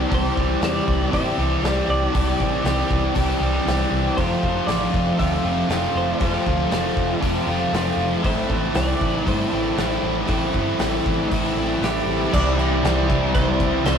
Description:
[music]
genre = rock, shoegaze and dream pop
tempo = 118 BPM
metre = 4/4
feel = straight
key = C major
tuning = A4 = 442 Hz
[part]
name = biting overdriven guitar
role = riff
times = 0.0-14.0 s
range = F2 to G4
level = -21 LUFS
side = equal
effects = none
[part]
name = vintage muted picked electric bass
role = bass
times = 0.0-14.0 s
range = F1 to A2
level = -26 LUFS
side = equal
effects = none
[part]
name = twelve-string electric guitar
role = melody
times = 0.1-14.0 s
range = G4 to E5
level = -29 LUFS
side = equal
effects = none
[part]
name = loose indie drum kit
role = drums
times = 0.1-14.0 s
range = crash cymbal, hi-hat, kick drum, snare drum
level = -26 LUFS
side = equal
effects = none
[sound]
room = moderate stone room reverb, RT60 1.4 s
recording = rough rehearsal-room recording, warm saturation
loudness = -18 LUFS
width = side -7 dB against mid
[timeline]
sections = 0.0-12.3 A section; 12.3-14.0 B section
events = none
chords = 0.0 Cadd9; 4.2 F; 8.2 Am; 12.3 Cadd9

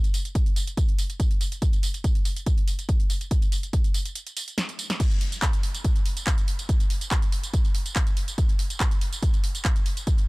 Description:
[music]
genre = techno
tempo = 142 BPM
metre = 4/4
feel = straight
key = none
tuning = none
[part]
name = techno drum kit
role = drums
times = 0.0-10.3 s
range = crash cymbal, handclaps, hi-hat, snare drum, tambourine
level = -31 LUFS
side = right 1 dB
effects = sidechain pumping on hats, sidechain pumping on perc, sidechain pumping on cymbals
[part]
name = electronic kick drum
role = drums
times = 0.4-10.2 s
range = none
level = -22 LUFS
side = equal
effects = none
[sound]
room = little or no reverb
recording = none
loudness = -22 LUFS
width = side -24 dB against mid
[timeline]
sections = 0.0-5.0 A section; 5.0-10.3 B section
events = break 4.2-5.0; drum fill 4.6-5.0; drop 5.0-10.3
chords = none

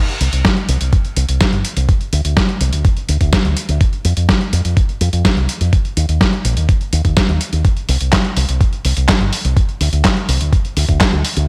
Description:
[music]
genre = italo disco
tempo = 125 BPM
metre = 4/4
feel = straight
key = C minor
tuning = A4 = 440 Hz
[part]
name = dusty soul sampler-style drum kit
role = drums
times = 0.1-11.5 s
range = handclaps, hi-hat, snare drum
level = -20 LUFS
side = equal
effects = overdrive
[part]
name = fingered electric bass with an envelope filter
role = bass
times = 0.2-11.5 s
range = G1 to F2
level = -18 LUFS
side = equal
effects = none
[part]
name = electronic kick drum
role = drums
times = 0.4-11.1 s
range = none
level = -17 LUFS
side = equal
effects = overdrive
[sound]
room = moderate lush hall reverb, RT60 1.6 s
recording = bright 1980s-style digital production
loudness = -15 LUFS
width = mono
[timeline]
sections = 0.0-11.5 A section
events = none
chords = none

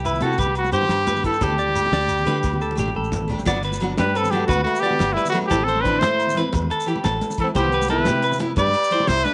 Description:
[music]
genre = highlife guitar band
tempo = 117 BPM (dotted quarters)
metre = 12/8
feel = straight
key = G major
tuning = A4 = 440 Hz
[part]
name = bright trumpet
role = melody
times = 0.0-9.3 s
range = E4 to D5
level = -24 LUFS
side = equal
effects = none
[part]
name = semi-hollow electric guitar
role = arpeggios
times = 0.0-9.3 s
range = G4 to D5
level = -29 LUFS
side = equal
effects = slapback echo
[part]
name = fingered electric bass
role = bass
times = 0.0-9.2 s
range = G1 to D3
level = -28 LUFS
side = equal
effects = none
[part]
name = agogo bells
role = percussion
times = 0.0-9.3 s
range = none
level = -37 LUFS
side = equal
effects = none
[part]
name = damped 70s drum kit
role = drums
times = 0.1-9.3 s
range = crash cymbal, hi-hat, kick drum, snare drum, toms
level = -30 LUFS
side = equal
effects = none
[part]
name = congas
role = percussion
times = 0.1-9.3 s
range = none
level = -32 LUFS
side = equal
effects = none
[part]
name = shekere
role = percussion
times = 0.1-9.3 s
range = none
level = -35 LUFS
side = equal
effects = none
[part]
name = picked steel-string acoustic guitar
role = accompaniment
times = 0.2-9.0 s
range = E3 to G4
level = -30 LUFS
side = equal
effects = none
[part]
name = breathy alto saxophone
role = second line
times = 4.0-9.3 s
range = G3 to G4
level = -31 LUFS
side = equal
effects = slapback echo
[sound]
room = light reverb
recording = nothing above 10.7 kHz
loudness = -21 LUFS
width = mono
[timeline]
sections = 0.0-3.5 A section; 3.5-9.3 B section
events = drum fill 2.4-3.5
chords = 0.0 Cmaj7; 1.4 Dsus4; 3.5 Gmaj7; 5.5 Am; 7.6 Cmaj7

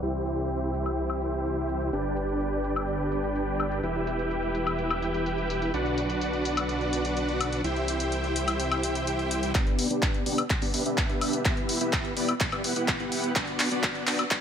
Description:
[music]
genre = EDM, festival progressive house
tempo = 126 BPM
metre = 4/4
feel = straight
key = G major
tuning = A4 = 440 Hz
[part]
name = dense compressed supersaw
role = riff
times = 0.0-14.4 s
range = B3 to G5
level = -28 LUFS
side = equal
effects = sidechain pumping, low-pass filter, dub echo
[part]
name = wide detuned saw bass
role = bass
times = 0.0-9.5 s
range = E1 to C2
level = -32 LUFS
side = equal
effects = chorus, sidechain pumping
[part]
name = big-room dance drum kit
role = drums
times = 0.0-14.4 s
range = handclaps, hi-hat, woodblock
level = -29 LUFS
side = left 2 dB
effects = high-pass filter on hats, high-pass filter on perc, high-pass filter on snare
[part]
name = electronic kick drum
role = drums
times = 9.5-14.4 s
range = none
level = -28 LUFS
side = equal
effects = none
[sound]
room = light reverb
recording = high-pass filter, low-pass filter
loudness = -25 LUFS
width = side -8 dB against mid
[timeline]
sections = 0.0-9.5 A section; 9.5-14.4 B section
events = filter sweep on supersaw synth 0.0-9.5, 9.5-14.4; filter sweep 0.0-9.5, 9.5-14.4; build-up 9.5-14.4; drum fill 9.5-14.4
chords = 0.0 C; 1.9 G; 3.8 Em; 5.7 Bm; 7.6 C; 9.5 G; 11.5 Em; 13.4 Bm

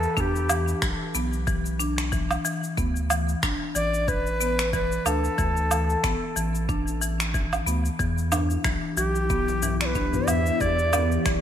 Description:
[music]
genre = organic downtempo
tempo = 92 BPM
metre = 4/4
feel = swing 56% on 16ths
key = E minor pentatonic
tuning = A4 = 440 Hz
[part]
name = bright Native American-style cedar flute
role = melody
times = 0.0-11.3 s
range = G4 to E5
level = -28 LUFS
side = equal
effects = digital delay
[part]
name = marimba with hard mallets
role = arpeggios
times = 0.0-11.4 s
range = E3 to D4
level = -29 LUFS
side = left 1 dB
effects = low-pass filter, ping-pong delay
[part]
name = round analog bass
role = bass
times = 0.0-11.4 s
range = A1 to E2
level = -27 LUFS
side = equal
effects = none
[part]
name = electronic cabasa, woodblock and finger snaps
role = drums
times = 0.0-11.4 s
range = none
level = -29 LUFS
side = right 2 dB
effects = studio reverb, gated reverb
[part]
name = electronic kick drum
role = drums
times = 0.2-11.4 s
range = none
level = -29 LUFS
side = equal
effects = studio reverb
[part]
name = ethereal airy pad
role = sustained chords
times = 8.5-11.4 s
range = E3 to G4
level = -31 LUFS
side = left 4 dB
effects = ensemble chorus, built-in reverb, phaser, sidechain pumping
[part]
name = djembe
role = percussion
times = 8.3-11.1 s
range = none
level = -36 LUFS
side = left 1 dB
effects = none
[sound]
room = moderate plate reverb, RT60 3.2 s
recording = bright 1980s-style digital production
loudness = -22 LUFS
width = side -9 dB against mid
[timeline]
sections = 0.0-11.4 A section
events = none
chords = 0.0 Em; 2.8 D5; 8.0 Em7

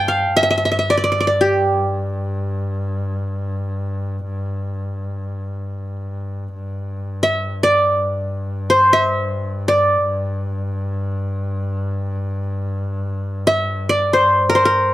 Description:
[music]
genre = Turkish makam ensemble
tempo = free time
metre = none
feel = none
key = G makam huseyni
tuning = A4 = 440 Hz
[part]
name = qanun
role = melody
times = 0.0-14.9 s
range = G4 to A5-30c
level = -15 LUFS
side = equal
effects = none
[part]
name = clear double bass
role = drone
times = 0.0-14.9 s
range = G2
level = -23 LUFS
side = left 1 dB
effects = none
[sound]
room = light reverb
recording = none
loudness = -17 LUFS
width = side -15 dB against mid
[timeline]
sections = 0.0-6.5 A section; 6.5-14.9 A section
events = none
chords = none

